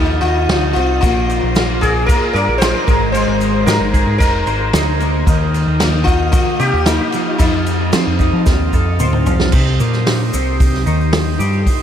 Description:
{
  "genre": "psychedelic rock",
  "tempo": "113 BPM",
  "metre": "4/4",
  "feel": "straight",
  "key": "C minor",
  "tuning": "A4 = 440 Hz",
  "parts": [
    { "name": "sitar", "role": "melody", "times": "0.0-9.2 s", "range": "Eb4 to C5", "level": "-19 LUFS", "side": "left 2 dB", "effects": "diffuse ambient delay" },
    { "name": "combo organ", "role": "sustained chords", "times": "0.0-11.8 s", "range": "Eb4 to Bb5", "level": "-26 LUFS", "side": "right 4 dB", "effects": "lush chorus" },
    { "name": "twelve-string electric guitar", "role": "riff", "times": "0.0-11.7 s", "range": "C3 to Eb5", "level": "-20 LUFS", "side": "equal", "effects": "rotary speaker, double-tracked left and right" },
    { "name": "deep dub picked electric bass", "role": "bass", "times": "0.0-11.6 s", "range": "F1 to F3", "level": "-18 LUFS", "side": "equal", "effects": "none" },
    { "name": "vintage drum kit", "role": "drums", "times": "0.2-11.8 s", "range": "crash cymbal, hi-hat, kick drum, snare drum, toms", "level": "-17 LUFS", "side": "equal", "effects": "none" },
    { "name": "tube shaker", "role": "percussion", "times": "1.0-11.8 s", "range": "none", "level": "-35 LUFS", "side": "left 3 dB", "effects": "none" }
  ],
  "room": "moderate huge ambient reverb, RT60 7.8 s",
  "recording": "dreamy mix soaked in reverb",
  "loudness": "-12 LUFS",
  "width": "side -9 dB against mid",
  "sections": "0.0-9.5 A section; 9.5-11.8 B section",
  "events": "drum fill 8.5-9.5",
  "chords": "0.0 F7; 1.0 Bbadd9; 2.9 Abadd9; 5.3 Ebadd9; 7.4 F7; 9.5 Cm"
}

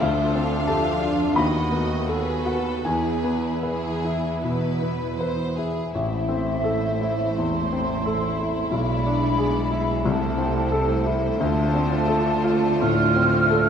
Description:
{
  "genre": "classical, romantic movement for piano and orchestra",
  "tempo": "75-92 BPM",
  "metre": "4/4",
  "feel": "rubato",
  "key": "A minor",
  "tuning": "A4 = 439 Hz",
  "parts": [
    { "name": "clear baby grand piano", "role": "melody", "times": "0.0-13.7 s", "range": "A1 to B5", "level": "-24 LUFS", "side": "left 1 dB", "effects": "none" },
    { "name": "rich studio violin section", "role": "second line", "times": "0.0-13.7 s", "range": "E4 to F5", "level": "-32 LUFS", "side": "left 1 dB", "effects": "none" },
    { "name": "warm studio viola section", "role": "accompaniment", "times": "0.0-13.7 s", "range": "G#3 to A4", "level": "-31 LUFS", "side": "right 2 dB", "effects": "none" },
    { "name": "rich studio cello section", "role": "bass", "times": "0.0-13.7 s", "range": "D2 to D3", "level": "-31 LUFS", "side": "right 3 dB", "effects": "none" },
    { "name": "rich studio violin section", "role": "melody", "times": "5.9-13.7 s", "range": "C5 to D5", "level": "-38 LUFS", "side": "left 3 dB", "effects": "none" },
    { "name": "mellow hollow flute section", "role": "second line", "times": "5.9-13.7 s", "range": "E5 to F6", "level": "-26 LUFS", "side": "right 1 dB", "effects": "none" },
    { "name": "mellow French horn section", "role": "sustained chords", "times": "5.9-13.7 s", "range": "G#3 to F4", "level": "-30 LUFS", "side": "left 1 dB", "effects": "none" },
    { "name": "rich studio double bass section", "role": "bass", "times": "5.9-13.7 s", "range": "A1 to D2", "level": "-28 LUFS", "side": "right 3 dB", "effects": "none" }
  ],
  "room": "wet recital hall reverb, RT60 1.7 s",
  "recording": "none",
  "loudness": "-20 LUFS",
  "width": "side -8 dB against mid",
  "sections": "0.0-5.9 A section; 5.9-13.7 B section",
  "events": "none",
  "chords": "0.0 Dm7; 1.4 B7/D#; 2.8 E; 5.9 Am; 8.7 E7/B; 10.1 Am/C; 11.4 Dm7"
}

